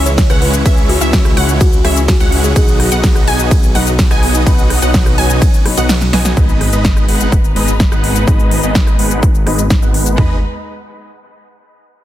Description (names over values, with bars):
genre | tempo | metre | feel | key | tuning
EDM, festival progressive house | 126 BPM | 4/4 | straight | G# minor | A4 = 440 Hz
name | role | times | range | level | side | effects
dark grand piano | accompaniment | 0.0-10.4 s | G#2 to B4 | -24 LUFS | left 3 dB | none
dark studio string section | sustained chords | 0.0-10.4 s | C#3 to B4 | -26 LUFS | left 2 dB | sidechain pumping, low-pass filter
wide unison pluck | arpeggios | 0.0-6.3 s | E5 to G#5 | -22 LUFS | right 1 dB | sidechain pumping, dub echo
dense compressed supersaw | riff | 0.0-10.4 s | G#3 to G#5 | -19 LUFS | right 1 dB | sidechain pumping, low-pass filter, dub echo
detuned saw bass | bass | 0.0-10.4 s | G#1 to C#2 | -16 LUFS | equal | sidechain pumping
buzzing kalimba | melody | 0.1-2.6 s | F#4 to C#5 | -22 LUFS | left 1 dB | dub echo
big-room dance drum kit | drums | 0.1-10.2 s | hi-hat, ride cymbal, rim click, shaker, snare drum | -18 LUFS | equal | overdrive
big-room dance drum kit | drums | 0.2-10.3 s | kick drum, toms | -12 LUFS | equal | overdrive
sub drop | sound effects | 6.4-8.3 s | none | -23 LUFS | equal | none
room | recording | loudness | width
little or no reverb | dense, heavily limited modern master | -10 LUFS | side -13 dB against mid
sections
0.0-6.4 A section; 6.4-10.2 B section; 10.2-12.0 C section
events
drop 0.0-6.4; kick drops out 5.9-6.4; drum fill 6.0-6.4; impact 6.4-8.3; filter sweep on supersaw synth 6.4-10.2; filter sweep on string section 6.4-10.2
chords
0.0 C#m; 2.6 B; 6.4 G#m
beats
0.18 | 0.66 1.13 1.61 2.08 | 2.56 3.04 3.51 3.99 | 4.47 4.94 5.42 5.89 | 6.37 6.85 7.32 7.80 | 8.28 8.75 9.23 9.70 | 10.18